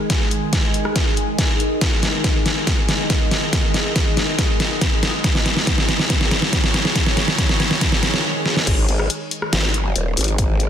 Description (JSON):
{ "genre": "heavy wobble dubstep", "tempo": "140 BPM", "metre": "4/4", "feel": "half-time", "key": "unclear", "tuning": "A4 = 440 Hz", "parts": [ { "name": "evolving wavetable pad", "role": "sustained chords", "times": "0.0-10.7 s", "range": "D#3 to G#5", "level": "-25 LUFS", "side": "equal", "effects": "phaser, built-in reverb, sidechain pumping" }, { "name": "dubstep drum kit", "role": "drums", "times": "0.1-10.7 s", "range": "crash cymbal, hi-hat, rim click, snare drum", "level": "-19 LUFS", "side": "equal", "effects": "none" }, { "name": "electronic kick drum", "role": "drums", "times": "0.1-10.5 s", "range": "none", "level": "-21 LUFS", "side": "equal", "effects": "none" }, { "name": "growl bass", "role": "bass", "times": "8.7-10.7 s", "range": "D#1 to G#1", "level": "-20 LUFS", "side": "equal", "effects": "chorus, overdrive" } ], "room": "moderate lush hall reverb, RT60 1.7 s", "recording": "dense, heavily limited modern master", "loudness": "-16 LUFS", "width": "side -9 dB against mid", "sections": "0.0-8.7 A section; 8.7-10.7 B section", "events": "build-up 0.0-8.7; drum fill 0.0-8.2, 8.5; filter sweep on ambient pad 0.0-8.7; drop 8.7-10.7", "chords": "0.0 G#5" }